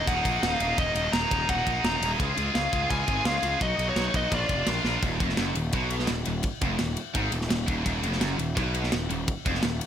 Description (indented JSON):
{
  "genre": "heavy metal",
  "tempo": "170 BPM",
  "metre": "4/4",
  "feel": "straight",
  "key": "Eb minor",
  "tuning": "A4 = 440 Hz",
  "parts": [
    { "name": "high-gain lead guitar", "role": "melody", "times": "0.0-4.7 s", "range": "Db5 to Bb5", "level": "-29 LUFS", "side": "left 1 dB", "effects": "distortion" },
    { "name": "scooped high-gain guitar", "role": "riff", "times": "0.0-9.8 s", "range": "Eb2 to Ab4", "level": "-29 LUFS", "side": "equal", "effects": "distortion" },
    { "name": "fuzz picked electric bass", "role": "bass", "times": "0.1-9.8 s", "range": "Eb1 to Db2", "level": "-30 LUFS", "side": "equal", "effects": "overdrive" },
    { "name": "tight metal drum kit", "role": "drums", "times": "0.1-9.9 s", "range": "kick drum, ride cymbal, snare drum", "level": "-29 LUFS", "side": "equal", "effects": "none" }
  ],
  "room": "little or no reverb",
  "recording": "none",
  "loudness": "-24 LUFS",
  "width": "side -9 dB against mid",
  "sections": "0.0-5.0 A section; 5.0-9.9 B section",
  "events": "drum fill 4.9",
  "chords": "0.0 Ebm; 2.2 Db; 3.6 B; 4.3 Bb; 5.0 Ebm",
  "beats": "0.07 0.43 | 0.78 1.14 1.49 1.84 | 2.20 2.55 2.91 3.26 | 3.61 3.97 4.32 4.67 | 5.03 5.38 5.74 6.09 | 6.44 6.80 7.15 7.51 | 7.86 8.21 8.57 8.92 | 9.28 9.63"
}